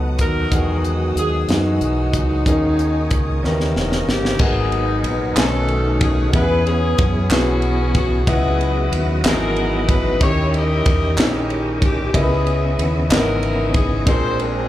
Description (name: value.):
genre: slow gospel.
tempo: 62 BPM (dotted quarters).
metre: 6/8.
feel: straight.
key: unclear.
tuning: A4 = 440 Hz.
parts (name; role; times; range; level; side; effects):
clear baby grand piano; accompaniment; 0.0-14.7 s; G#2 to G#5; -24 LUFS; equal; slapback echo.
overdriven tonewheel organ; sustained chords; 0.0-14.7 s; C#3 to D#5; -26 LUFS; right 1 dB; fast rotary speaker, chorus vibrato.
warm studio string section; sustained chords; 0.0-4.4 s; E5 to E6; -36 LUFS; left 3 dB; none.
deep dub fingered electric bass; bass; 0.0-14.7 s; E1 to F#2; -20 LUFS; equal; none.
breathy alto saxophone; melody; 0.2-3.8 s; D#4 to A#4; -24 LUFS; right 1 dB; none.
clear saxophone section; melody; 0.2-14.7 s; G#3 to D#5; -23 LUFS; left 2 dB; slapback echo, tape echo.
tight funk drum kit; drums; 0.2-14.5 s; crash cymbal, hi-hat, kick drum, ride cymbal, snare drum; -21 LUFS; equal; none.
group handclap; percussion; 5.4-13.4 s; none; -25 LUFS; right 1 dB; none.
room: light reverb.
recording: live gig heard through the venue's PA, club reverb.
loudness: -16 LUFS.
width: side -13 dB against mid.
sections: 0.0-4.4 A section; 4.4-14.7 B section.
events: drum fill 3.4-4.4.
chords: 0.0 B7; 0.5 Emaj9; 2.5 D#7sus4; 3.4 D#7b9; 4.4 G#m9; 5.4 B13; 6.3 E6; 8.3 C#m11; 10.2 D#7b9; 12.1 C#m9; 14.1 A#9.